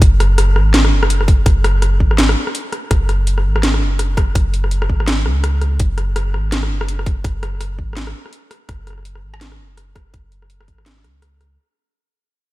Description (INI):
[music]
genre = half-time drum and bass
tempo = 166 BPM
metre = 4/4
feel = swing 58% on 16ths, half-time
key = unclear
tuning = A4 = 442 Hz
[part]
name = long sustained 808-style bass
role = bass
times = 0.0-11.6 s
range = F#1 to C#2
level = -16 LUFS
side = equal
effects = none
[part]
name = drum and bass drum kit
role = drums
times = 0.0-11.5 s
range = hi-hat, rim click, snare drum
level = -20 LUFS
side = equal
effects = none
[part]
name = electronic kick drum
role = drums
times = 0.0-10.8 s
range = none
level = -15 LUFS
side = equal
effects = none
[sound]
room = little or no reverb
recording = none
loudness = -14 LUFS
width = side -18 dB against mid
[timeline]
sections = 0.0-11.6 A section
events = fade-out 0.0-11.6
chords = none